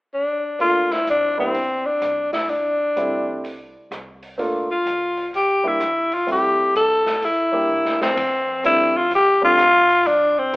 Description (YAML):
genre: jazz, small-group swing and bop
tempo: 127 BPM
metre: 4/4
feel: swing 66% on 8ths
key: F major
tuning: A4 = 441 Hz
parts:
  - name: growling tenor saxophone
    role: melody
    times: 0.1-10.6 s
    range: C4 to A4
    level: -17 LUFS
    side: left 1 dB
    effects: none
  - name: warm grand piano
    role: accompaniment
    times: 0.6-10.6 s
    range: G3 to G4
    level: -26 LUFS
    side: right 1 dB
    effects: none
  - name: open jazz drum kit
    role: drums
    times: 0.6-10.6 s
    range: hi-hat, kick drum, ride cymbal, rim click, snare drum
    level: -31 LUFS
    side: equal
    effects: none
  - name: upright bass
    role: bass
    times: 1.1-10.6 s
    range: C2 to G2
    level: -45 LUFS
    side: equal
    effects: none
room: moderate recital hall reverb, RT60 1.5 s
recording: recorded in a church or concert hall, telephone sound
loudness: -17 LUFS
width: side -22 dB against mid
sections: 0.6-8.2 A section; 8.2-10.6 B section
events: drum fill 7.7-8.2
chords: 0.0 N.C.; 0.6 Gm9; 1.5 Csus2; 2.5 D9sus4; 3.4 N.C.; 4.4 C13sus4; 5.3 C9; 6.3 C6; 7.2 C9; 8.2 F69